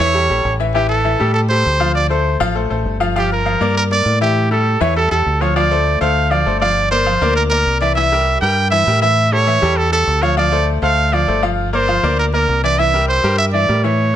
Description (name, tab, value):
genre	latin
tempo	199 BPM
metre	4/4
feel	straight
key	D minor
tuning	A4 = 440 Hz
part	clear trumpet	melody	0.0-14.2 s	G4 to G5	-16 LUFS	right 2 dB	none
part	bright grand piano	accompaniment	0.0-14.1 s	E3 to F5	-19 LUFS	left 3 dB	none
part	deep dub fingered electric bass	bass	0.0-14.2 s	G1 to A2	-18 LUFS	equal	none
room	light reverb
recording	close, detailed microphones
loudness	-13 LUFS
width	side -10 dB against mid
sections	0.0-5.6 A section; 5.6-14.2 B section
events	none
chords	0.0 A7; 0.7 Am7; 2.0 Dm7; 3.2 Gm7; 4.4 A5; 5.6 Dm7; 6.8 Gm7; 8.0 C7; 9.2 A7; 10.4 Dm7; 11.6 Gm7; 12.8 C7